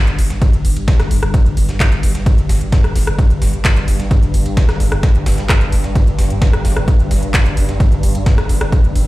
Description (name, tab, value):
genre	driving peak-time techno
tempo	130 BPM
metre	4/4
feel	straight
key	unclear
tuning	A4 = 440 Hz
part	swarming drone	drone	0.1-9.1 s	G2	-23 LUFS	equal	built-in reverb, sidechain pumping
part	saturated sub bass	bass	0.1-9.1 s	G1	-17 LUFS	equal	overdrive, sidechain pumping, low-pass filter
part	techno drum kit	drums	0.1-9.0 s	handclaps, hi-hat, rim click	-23 LUFS	equal	sidechain pumping on hats, sidechain pumping on cymbals
part	breakbeat sampler-style drum kit	drums	0.2-9.1 s	ride cymbal, snare drum	-30 LUFS	equal	sidechain pumping on cymbals, high-pass filter on cymbals, high-pass filter on snare, high-pass filter on room
part	electronic kick drum	drums	0.4-8.8 s	none	-13 LUFS	equal	none
room	little or no reverb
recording	played on a big sound system in a bare room, large studio reverb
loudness	-12 LUFS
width	side -18 dB against mid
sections	0.0-9.1 A section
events	none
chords	none